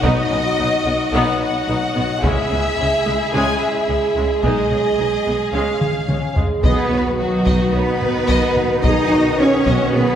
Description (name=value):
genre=cinematic, hybrid orchestral and electronic film score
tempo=109 BPM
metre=4/4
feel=straight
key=unclear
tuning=A4 = 440 Hz
part: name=rich studio violin section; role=melody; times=0.0-10.0 s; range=C#5 to G#5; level=-24 LUFS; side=left 2 dB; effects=none
part: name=warm symphonic violin section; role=second line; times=0.0-10.2 s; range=E4 to D#5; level=-24 LUFS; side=left 2 dB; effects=none
part: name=rich studio viola section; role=accompaniment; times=0.0-10.2 s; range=G#3 to G#4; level=-25 LUFS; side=equal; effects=none
part: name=mellow French horn section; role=sustained chords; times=0.0-10.2 s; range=F#3 to B4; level=-23 LUFS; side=right 1 dB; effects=none
part: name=warm symphonic cello section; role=bass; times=0.0-10.2 s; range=B2 to D#4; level=-22 LUFS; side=right 1 dB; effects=none
part: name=warm symphonic double bass section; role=bass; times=0.0-10.0 s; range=B1 to C#2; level=-25 LUFS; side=right 1 dB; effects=none
part: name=solo taiko drums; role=drums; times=0.0-10.2 s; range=none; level=-22 LUFS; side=equal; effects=none
part: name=warm trombone section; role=sustained chords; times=6.6-10.2 s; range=B2 to D#3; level=-26 LUFS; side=right 1 dB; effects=none
part: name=dark tuba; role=bass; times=6.6-10.0 s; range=B1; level=-25 LUFS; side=right 1 dB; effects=none
room=wet recital hall reverb, RT60 1.8 s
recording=recorded in a church or concert hall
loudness=-15 LUFS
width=side -9 dB against mid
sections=0.0-6.6 A section; 6.6-10.2 B section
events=drum fill 5.8-6.6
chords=0.0 B; 2.2 C#m; 4.4 G#m/B; 5.5 C#; 6.6 B